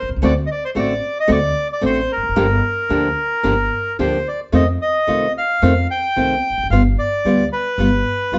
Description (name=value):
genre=tango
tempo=111 BPM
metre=4/4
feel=rubato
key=G minor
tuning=A4 = 439 Hz
part: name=bandoneon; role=melody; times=0.0-8.4 s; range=Bb4 to G5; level=-22 LUFS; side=equal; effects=none
part: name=upright bass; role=bass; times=0.0-8.4 s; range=E1 to F2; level=-24 LUFS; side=equal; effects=none
part: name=nylon-string guitar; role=accompaniment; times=0.2-8.4 s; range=C3 to G4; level=-21 LUFS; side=equal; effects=none
room=moderate stone room reverb, RT60 0.9 s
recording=band playing live in one room, nothing above 7.6 kHz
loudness=-18 LUFS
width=mono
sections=0.0-8.4 A section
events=none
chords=0.2 D7; 2.4 Gm7; 4.5 F7; 6.7 G7